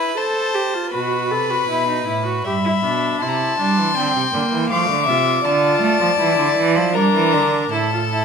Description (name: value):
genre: classical, baroque-style fugue for string quartet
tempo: 79 BPM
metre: 3/4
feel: straight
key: unclear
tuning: A4 = 439 Hz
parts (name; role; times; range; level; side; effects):
- rich violin; melody; 0.0-8.2 s; A5 to D6; -22 LUFS; left 8 dB; none
- rich violin; second line; 0.0-8.2 s; A4 to A5; -22 LUFS; left 3 dB; none
- warm viola; accompaniment; 0.0-8.2 s; A3 to A4; -23 LUFS; right 3 dB; none
- rich cello; bass; 0.9-8.2 s; G2 to A3; -21 LUFS; right 5 dB; none
room: moderate recital hall reverb, RT60 1.4 s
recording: minimal, uncompressed stereo recording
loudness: -16 LUFS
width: side -6 dB against mid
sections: 0.9-8.2 A section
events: none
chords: 0.2 Am; 0.9 B7; 2.4 Em/G; 3.2 C7; 4.7 F; 5.4 Dm; 7.0 Gm; 7.7 A5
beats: 0.16 | 0.93 1.69 2.45 | 3.21 3.96 4.70 | 5.45 6.19 6.95 | 7.72